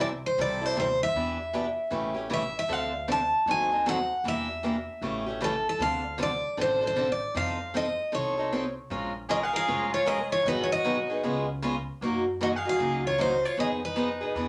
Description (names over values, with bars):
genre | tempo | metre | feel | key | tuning
acoustic string swing (jazz manouche) | 154 BPM | 4/4 | swing 64% on 8ths | D minor, Bb minor from 8.9 s | A4 = 439 Hz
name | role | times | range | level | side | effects
picked steel-string acoustic guitar | melody | 0.0-14.5 s | A4 to A5 | -30 LUFS | equal | none
picked steel-string acoustic guitar | accompaniment | 0.0-14.5 s | C3 to Bb4 | -33 LUFS | equal | none
upright bass | bass | 0.0-14.5 s | F1 to Gb2 | -42 LUFS | equal | none
warm violin | second line | 9.3-14.3 s | Eb4 to Ab4 | -35 LUFS | equal | none
room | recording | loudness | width
wet club reverb, RT60 0.6 s | none | -28 LUFS | mono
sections
0.0-8.9 A section; 8.9-14.5 B section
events
none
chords
0.0 C6; 1.1 Em7; 1.9 A7; 2.7 Dm7; 3.5 D#dim7; 4.2 Em7b5; 5.0 A7; 5.8 Dm7; 7.4 F7; 8.9 Bbm7; 10.5 Abm7; 11.2 Db7; 12.0 Gb6; 13.6 Fm7b5